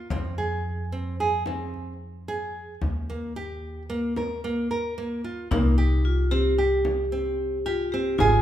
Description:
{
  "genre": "contemporary instrumental, chamber music in an uneven meter",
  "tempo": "111 BPM",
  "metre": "5/4",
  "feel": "straight",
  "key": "unclear",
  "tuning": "A4 = 444 Hz",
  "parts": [
    { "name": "nylon-string guitar", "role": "arpeggios", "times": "0.0-8.4 s", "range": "Bb3 to Bb4", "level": "-28 LUFS", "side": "right 2 dB", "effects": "none" },
    { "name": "upright bass", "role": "bass", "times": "0.0-8.4 s", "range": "Ab1 to F2", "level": "-27 LUFS", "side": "equal", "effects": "none" },
    { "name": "frame drum", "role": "percussion", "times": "0.1-8.4 s", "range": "none", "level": "-32 LUFS", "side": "left 3 dB", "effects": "none" },
    { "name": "vibraphone with hard mallets", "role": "second line", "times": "5.5-8.4 s", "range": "Eb4 to G4", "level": "-25 LUFS", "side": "left 1 dB", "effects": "none" }
  ],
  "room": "moderate recital hall reverb, RT60 1.7 s",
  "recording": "minimal, uncompressed stereo recording",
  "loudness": "-24 LUFS",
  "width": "side -11 dB against mid",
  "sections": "0.0-5.5 A section; 5.5-8.4 B section",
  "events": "none",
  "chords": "0.1 Fm; 2.8 Eb; 5.5 C5"
}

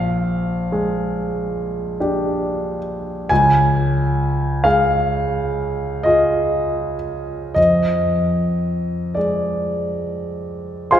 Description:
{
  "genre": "classical, impressionist solo piano",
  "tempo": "32-48 BPM (dotted quarters)",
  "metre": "9/8",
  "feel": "rubato",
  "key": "unclear",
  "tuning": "A4 = 440 Hz",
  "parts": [
    { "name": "clear grand piano", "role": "solo", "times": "0.0-11.0 s", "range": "Bb1 to C6", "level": "-17 LUFS", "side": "equal", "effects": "none" }
  ],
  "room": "wet church reverb, RT60 3.0 s",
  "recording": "recorded in a church or concert hall",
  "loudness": "-17 LUFS",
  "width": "side -10 dB against mid",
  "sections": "0.0-11.0 A section",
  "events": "none",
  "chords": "0.0 Bb6; 3.3 Db; 7.6 Fm6"
}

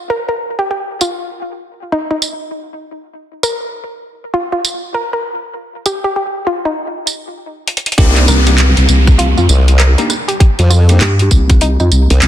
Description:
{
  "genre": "glitch hop",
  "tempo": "99 BPM",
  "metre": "4/4",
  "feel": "swing 61% on 16ths",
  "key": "C minor",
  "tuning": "A4 = 440 Hz",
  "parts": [
    { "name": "woody wave-folded pluck", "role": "melody", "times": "0.1-11.9 s", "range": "Eb4 to Bb4", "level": "-20 LUFS", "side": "equal", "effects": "chorus, tape echo" },
    { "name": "drum and bass drum kit", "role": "drums", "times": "1.0-12.3 s", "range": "handclaps, hi-hat, rim click, tambourine", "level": "-17 LUFS", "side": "right 1 dB", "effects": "none" },
    { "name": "bell-like tine electric piano", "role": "stabs", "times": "8.0-11.0 s", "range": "Bb3 to G4", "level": "-21 LUFS", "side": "equal", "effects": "fast stereo tremolo, sidechain pumping, tape echo" },
    { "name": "formant-sweep wobble bass", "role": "bass", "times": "8.0-12.2 s", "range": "C2 to F2", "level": "-8 LUFS", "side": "equal", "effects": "chorus, tube saturation" },
    { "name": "electronic kick drum", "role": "drums", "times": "8.0-11.6 s", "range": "none", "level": "-9 LUFS", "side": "equal", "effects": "none" },
    { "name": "downlifter", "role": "sound effects", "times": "8.0-12.3 s", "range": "none", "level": "-20 LUFS", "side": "left 1 dB", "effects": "none" },
    { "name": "vowel-sweep wobble bass", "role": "bass", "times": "8.3-12.3 s", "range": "C2 to G2", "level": "-10 LUFS", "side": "equal", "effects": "chorus" }
  ],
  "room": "light reverb",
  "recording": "dense, heavily limited modern master",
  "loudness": "-11 LUFS",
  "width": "side -12 dB against mid",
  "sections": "0.0-8.0 A section; 8.0-12.3 B section",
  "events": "drum fill 7.7-8.0; drop 8.0-12.3",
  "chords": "0.0 N.C.; 8.0 Cm7"
}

